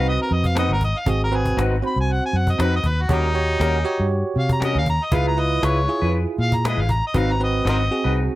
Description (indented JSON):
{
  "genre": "straight-eighth soul blues",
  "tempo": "118 BPM",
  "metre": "4/4",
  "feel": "swing 54% on 16ths",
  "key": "Ab mixolydian",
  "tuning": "A4 = 441 Hz",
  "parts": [
    { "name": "warm harmonica", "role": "melody", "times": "0.0-8.2 s", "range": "Eb4 to B5", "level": "-24 LUFS", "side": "equal", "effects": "overdrive" },
    { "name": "bell-like tine electric piano", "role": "accompaniment", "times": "0.0-8.4 s", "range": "C4 to Db5", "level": "-25 LUFS", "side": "right 4 dB", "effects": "medium stereo tremolo" },
    { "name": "electric guitar through a small old amp", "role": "stabs", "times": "0.0-8.2 s", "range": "G3 to B4", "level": "-26 LUFS", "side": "left 3 dB", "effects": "lush chorus, slapback echo" },
    { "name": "vintage muted fingered electric bass", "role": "bass", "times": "0.0-8.3 s", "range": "Ab1 to C3", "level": "-21 LUFS", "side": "equal", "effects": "none" },
    { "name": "cajon", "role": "drums", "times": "0.1-8.2 s", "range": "none", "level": "-25 LUFS", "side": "equal", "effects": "none" }
  ],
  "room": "light reverb",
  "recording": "none",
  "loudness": "-18 LUFS",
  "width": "side -16 dB against mid",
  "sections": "0.0-8.4 A section",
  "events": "harmonica solo 0.0-8.4",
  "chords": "0.0 Ab7#9; 3.1 Eb7#9; 5.1 Db7#9; 7.1 Ab7#9",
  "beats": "0.06 0.56 | 1.07 1.57 2.08 2.59 | 3.10 3.60 4.11 4.62 | 5.12 5.63 6.13 6.64 | 7.15 7.65 8.16"
}